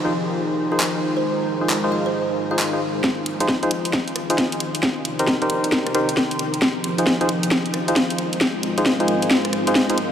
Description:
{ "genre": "UK garage, two-step garage", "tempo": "134 BPM", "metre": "4/4", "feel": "swing 64% on 16ths", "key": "F dorian", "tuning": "A4 = 436 Hz", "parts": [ { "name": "warm analog pad", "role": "sustained chords", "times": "0.0-10.1 s", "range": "C3 to Eb5", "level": "-29 LUFS", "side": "left 1 dB", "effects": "chorus, sidechain pumping" }, { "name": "percussive organ stab", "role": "stabs", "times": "0.0-10.0 s", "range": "Eb4 to C5", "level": "-23 LUFS", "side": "equal", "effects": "chorus, diffuse ambient delay" }, { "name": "deep dark ambient pad", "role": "texture", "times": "0.0-10.1 s", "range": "Ab3 to G5", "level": "-28 LUFS", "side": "equal", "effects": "chorus, built-in reverb, sidechain pumping" }, { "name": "kalimba", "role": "melody", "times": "0.7-2.8 s", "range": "Bb4 to F5", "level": "-31 LUFS", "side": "right 4 dB", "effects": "diffuse ambient delay" }, { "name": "garage drum kit", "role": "drums", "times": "0.8-10.1 s", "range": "handclaps, hi-hat, rim click, snare drum", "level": "-22 LUFS", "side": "equal", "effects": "overdrive, studio reverb" }, { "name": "electronic kick drum", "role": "drums", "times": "3.0-9.9 s", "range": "none", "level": "-25 LUFS", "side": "equal", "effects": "overdrive, high-pass filter on kick, studio reverb" } ], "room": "wet huge ambient reverb, RT60 7.6 s", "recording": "dreamy mix soaked in reverb", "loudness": "-18 LUFS", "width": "side -9 dB against mid", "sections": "0.0-3.0 A section; 3.0-10.1 B section", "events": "build-up 3.0-10.1; drum fill 3.0-10.1; filter sweep on analog synth pad 3.0-10.1", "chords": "0.0 Fm7; 1.0 Ab6; 3.0 Fm7; 4.8 Cm7; 6.6 Fm7; 8.2 Ab6" }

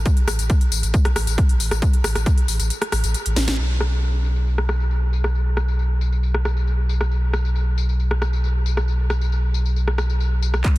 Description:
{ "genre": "driving peak-time techno", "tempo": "136 BPM", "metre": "4/4", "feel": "straight", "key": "unclear", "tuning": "A4 = 440 Hz", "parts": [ { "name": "warm sub bass", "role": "bass", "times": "0.0-10.6 s", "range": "A1 to B1", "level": "-20 LUFS", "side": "equal", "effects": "sidechain pumping, low-pass filter" }, { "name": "electronic kick drum", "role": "drums", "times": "0.1-2.4, 10.6-10.7 s", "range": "none", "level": "-16 LUFS", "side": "equal", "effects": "overdrive" }, { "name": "techno drum kit", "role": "drums", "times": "0.1-10.8 s", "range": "handclaps, hi-hat, rim click, snare drum, tambourine", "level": "-26 LUFS", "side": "left 1 dB", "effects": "overdrive, sidechain pumping on hats, low-pass filter on hats, sidechain pumping on perc, low-pass filter on perc, low-pass filter on snare" } ], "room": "digital ambience", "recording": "dense, heavily limited modern master", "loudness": "-18 LUFS", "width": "side -18 dB against mid", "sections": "0.0-3.6 A section; 3.6-10.6 B section", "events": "drop 0.0-3.6; break 2.7-3.6; drum fill 3.4", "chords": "none" }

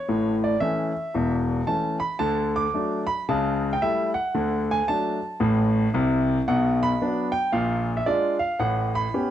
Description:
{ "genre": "jazz, stride piano", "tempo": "113 BPM", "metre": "4/4", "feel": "swing 62% on 8ths", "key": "unclear", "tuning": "A4 = 440 Hz", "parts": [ { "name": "warm concert grand piano", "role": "solo", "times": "0.0-9.3 s", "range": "E1 to D6", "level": "-21 LUFS", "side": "equal", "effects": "none" } ], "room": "moderate studio reverb, RT60 0.9 s", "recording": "worn, warbling old tape, cassette tape, warbly pitch drift", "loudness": "-21 LUFS", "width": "side -11 dB against mid", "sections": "0.0-9.3 A section", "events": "none", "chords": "0.1 A; 2.2 D; 3.3 A7/C#; 4.3 D; 6.5 Bm; 7.5 Bb7; 8.6 A9" }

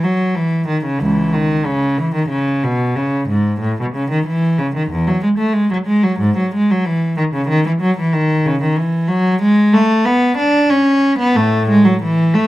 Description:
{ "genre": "classical, baroque-style suite movement for unaccompanied cello", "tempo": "93 BPM", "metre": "4/4", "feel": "rubato", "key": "E major, A major from 8.8 s", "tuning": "A4 = 439 Hz", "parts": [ { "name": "rich cello", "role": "solo", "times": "0.0-12.5 s", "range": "C#2 to D4", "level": "-13 LUFS", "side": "equal", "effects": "none" } ], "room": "light reverb", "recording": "none", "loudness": "-13 LUFS", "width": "side -16 dB against mid", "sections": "0.0-12.5 A section", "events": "none", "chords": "none" }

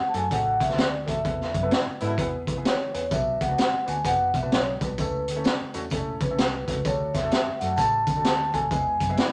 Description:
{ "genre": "uptempo 1960s-style soul", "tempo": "129 BPM", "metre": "4/4", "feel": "swing 63% on 8ths", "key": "unclear", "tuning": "A4 = 443 Hz", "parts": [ { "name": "vibraphone with soft mallets", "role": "melody", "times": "0.0-9.1 s", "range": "B4 to A5", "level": "-28 LUFS", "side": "equal", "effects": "none" }, { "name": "vintage muted fingered electric bass", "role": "bass", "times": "0.0-9.2 s", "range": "E1 to E3", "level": "-35 LUFS", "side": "equal", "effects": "none" }, { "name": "clear upright piano", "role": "accompaniment", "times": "0.1-9.3 s", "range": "G#3 to B4", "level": "-37 LUFS", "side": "equal", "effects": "none" }, { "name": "raw garage drum kit", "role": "drums", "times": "0.1-9.3 s", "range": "hi-hat, kick drum, snare drum", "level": "-29 LUFS", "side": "equal", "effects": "none" }, { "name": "mellow horn section", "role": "second line", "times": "1.7-2.3, 9.2-9.3 s", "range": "B2 to E4", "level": "-35 LUFS", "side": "equal", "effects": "none" }, { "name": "tambourine", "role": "percussion", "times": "3.1-9.3 s", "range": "none", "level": "-49 LUFS", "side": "equal", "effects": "none" } ], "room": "light reverb", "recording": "none", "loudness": "-25 LUFS", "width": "mono", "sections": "0.0-9.3 A section", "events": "band accent 1.2-3.1, 8.7-9.3", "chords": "0.0 D; 1.2 Esus4; 2.2 E; 3.1 Bm; 5.0 A/C#; 6.8 D; 8.7 E" }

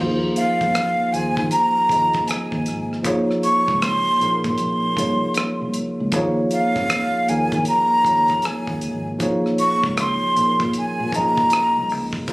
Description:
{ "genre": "R&B, neo-soul", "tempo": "78 BPM", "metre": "4/4", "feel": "swing 64% on 16ths", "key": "Bb minor", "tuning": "A4 = 441 Hz", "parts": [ { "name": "tine electric piano", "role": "accompaniment", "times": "0.0-12.3 s", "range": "F3 to Eb5", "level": "-22 LUFS", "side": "equal", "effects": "medium stereo tremolo" }, { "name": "fingered electric bass", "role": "bass", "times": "0.0-12.3 s", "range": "Ab1 to Eb3", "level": "-29 LUFS", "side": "equal", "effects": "none" }, { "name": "breathy jazz flute", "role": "melody", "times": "0.4-11.9 s", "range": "F5 to Db6", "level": "-19 LUFS", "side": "equal", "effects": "slapback echo" }, { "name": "damped 70s drum kit", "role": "drums", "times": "0.4-12.3 s", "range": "hi-hat, kick drum, rim click", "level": "-26 LUFS", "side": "equal", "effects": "none" } ], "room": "light reverb, small room ambience", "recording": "recorded on a phone in the room, club reverb, compression", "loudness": "-17 LUFS", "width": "side -23 dB against mid", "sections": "0.0-12.3 A section", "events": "none", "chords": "0.0 Ebsus24; 3.0 Bbm9; 6.1 Eb9sus4; 9.2 Bbm9" }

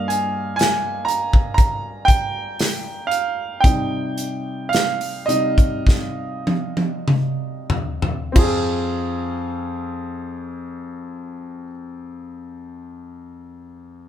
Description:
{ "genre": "pop ballad", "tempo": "45-62 BPM", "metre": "4/4", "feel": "straight", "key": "F minor", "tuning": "A4 = 440 Hz", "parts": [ { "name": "warm concert grand piano", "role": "accompaniment", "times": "0.0-14.1 s", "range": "F2 to Bb5", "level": "-23 LUFS", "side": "right 1 dB", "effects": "none" }, { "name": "modern studio drum kit", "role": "drums", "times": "0.1-8.7 s", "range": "crash cymbal, hi-hat, kick drum, snare drum, toms", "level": "-18 LUFS", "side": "equal", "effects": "none" } ], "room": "moderate studio reverb, RT60 0.5 s", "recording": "band playing live in one room", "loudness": "-18 LUFS", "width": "side -10 dB against mid", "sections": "0.0-8.4 A section; 8.4-13.7 B section", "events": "slowing down 0.0-8.4; grand piano solo 0.0-8.4; drum fill 5.9-8.4", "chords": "0.0 Gm7; 3.6 Cm; 8.4 Fm" }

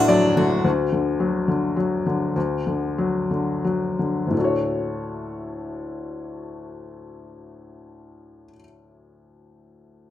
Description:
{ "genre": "acoustic folk-pop ballad", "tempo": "81-108 BPM", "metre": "3/4", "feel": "straight", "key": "D major", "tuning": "A4 = 440 Hz", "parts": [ { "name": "felt-muted upright piano", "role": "accompaniment", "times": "0.0-10.1 s", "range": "D1 to F#5", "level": "-21 LUFS", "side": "left 2 dB", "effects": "none" }, { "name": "picked steel-string acoustic guitar", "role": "arpeggios", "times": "0.0-0.7 s", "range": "A3 to F#4", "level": "-22 LUFS", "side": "right 3 dB", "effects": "plate reverb" } ], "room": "moderate studio reverb, RT60 0.6 s", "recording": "rough home demo mix", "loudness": "-21 LUFS", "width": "side -12 dB against mid", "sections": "0.6-4.4 A section; 4.4-8.8 B section", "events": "slowing down 0.6-4.4", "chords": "0.0 D; 4.4 Dmaj7" }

